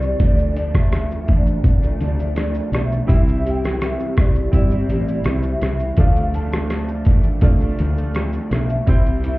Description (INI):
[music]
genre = indie pop, bedroom pop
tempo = 83 BPM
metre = 4/4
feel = straight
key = unclear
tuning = A4 = 439 Hz
[part]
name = hollow clarinet-like synth lead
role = melody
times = 0.0-9.4 s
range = D5 to A5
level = -28 LUFS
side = equal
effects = ensemble chorus, analog delay
[part]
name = electric guitar through a small old amp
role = accompaniment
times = 0.0-9.4 s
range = C3 to E4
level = -26 LUFS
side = left 1 dB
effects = ensemble chorus, warbly pitch drift
[part]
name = woody fretless electric bass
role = bass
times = 0.0-9.4 s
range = G1 to D2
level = -20 LUFS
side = equal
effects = none
[part]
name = trip hop sampler-style drum kit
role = drums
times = 0.0-9.4 s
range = hi-hat, kick drum, rim click, shaker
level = -17 LUFS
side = equal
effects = none
[part]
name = bright upright piano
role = accompaniment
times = 3.1-9.4 s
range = G3 to E5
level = -29 LUFS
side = right 2 dB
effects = cassette tape
[sound]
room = light reverb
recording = heard muffled through a wall, club reverb, EQ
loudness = -16 LUFS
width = side -20 dB against mid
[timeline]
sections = 0.0-9.4 A section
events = none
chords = 0.2 Dm; 3.1 C; 6.0 Dm; 8.9 C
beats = | 0.20 0.93 1.65 2.37 | 3.09 3.81 4.54 5.26 | 5.98 6.71 7.43 8.15 | 8.87